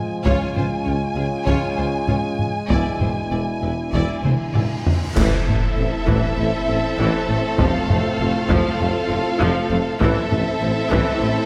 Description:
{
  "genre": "cinematic, epic orchestral film score",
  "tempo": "99 BPM",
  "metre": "4/4",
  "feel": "straight",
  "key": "A minor from 5.2 s",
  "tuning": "A4 = 440 Hz",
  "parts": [
    { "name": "warm symphonic violin section", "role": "melody", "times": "0.0-11.5 s", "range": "E5 to Ab5", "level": "-31 LUFS", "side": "equal", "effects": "none" },
    { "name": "clear trombone section", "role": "sustained chords", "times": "0.0-11.5 s", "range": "A2 to A3", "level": "-32 LUFS", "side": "equal", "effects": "none" },
    { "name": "mellow French horn section", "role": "sustained chords", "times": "0.0-11.5 s", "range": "C4 to F4", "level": "-31 LUFS", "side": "equal", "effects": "none" },
    { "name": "rich symphonic violin section", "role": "second line", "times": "0.3-11.5 s", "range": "Ab4 to D5", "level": "-32 LUFS", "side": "equal", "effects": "none" },
    { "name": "warm symphonic viola section", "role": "accompaniment", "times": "0.3-11.3 s", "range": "E3 to F4", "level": "-30 LUFS", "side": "equal", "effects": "none" },
    { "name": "warm symphonic cello section", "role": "bass", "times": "0.3-11.3 s", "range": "Db2 to A2", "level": "-30 LUFS", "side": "equal", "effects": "none" },
    { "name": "warm symphonic double bass section", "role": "bass", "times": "0.3-11.3 s", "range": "E1 to Db2", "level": "-30 LUFS", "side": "equal", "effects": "none" },
    { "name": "warm tuba", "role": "bass", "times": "0.3-11.3 s", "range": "E1 to Db2", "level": "-29 LUFS", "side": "equal", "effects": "none" },
    { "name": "solo taiko drums", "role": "drums", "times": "0.3-11.5 s", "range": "none", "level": "-25 LUFS", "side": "equal", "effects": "none" },
    { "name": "cymbal swell, clash cymbals and concert bass drum", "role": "percussion", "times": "2.7-6.3 s", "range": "none", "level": "-30 LUFS", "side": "equal", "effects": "none" },
    { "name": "cymbal swell and impact", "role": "sound effects", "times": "4.2-7.6 s", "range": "none", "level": "-36 LUFS", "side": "equal", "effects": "none" },
    { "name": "warm studio string section", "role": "sustained chords", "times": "5.2-11.5 s", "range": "C4 to C5", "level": "-29 LUFS", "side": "equal", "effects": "none" }
  ],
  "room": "light reverb",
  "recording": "none",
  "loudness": "-20 LUFS",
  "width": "mono",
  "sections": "0.0-5.2 A section; 5.2-11.5 B section",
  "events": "cymbal swell 4.2-5.2; drum fill 4.2-5.2; band accent 5.2-5.8; impact 5.2-7.6",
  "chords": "0.3 Db; 2.7 E7; 5.2 Am; 7.6 F; 10.0 Am"
}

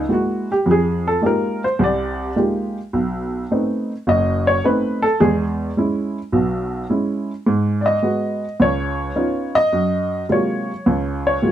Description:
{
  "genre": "jazz",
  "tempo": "106 BPM",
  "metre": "4/4",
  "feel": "swing 69% on 8ths",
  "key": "unclear",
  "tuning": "A4 = 440 Hz",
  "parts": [
    { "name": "warm upright piano", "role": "solo", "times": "0.0-11.5 s", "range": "F#1 to D#5", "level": "-17 LUFS", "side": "equal", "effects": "none" }
  ],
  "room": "light reverb",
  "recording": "dark, warm production",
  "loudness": "-17 LUFS",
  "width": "side -11 dB against mid",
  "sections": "0.0-11.5 A section",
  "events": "upright piano solo 0.0-11.5",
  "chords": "0.0 Gb9; 0.7 Fm11; 2.9 B7b9; 5.2 E6; 7.5 Abm7; 8.6 Db9; 9.7 Gbmaj9#11"
}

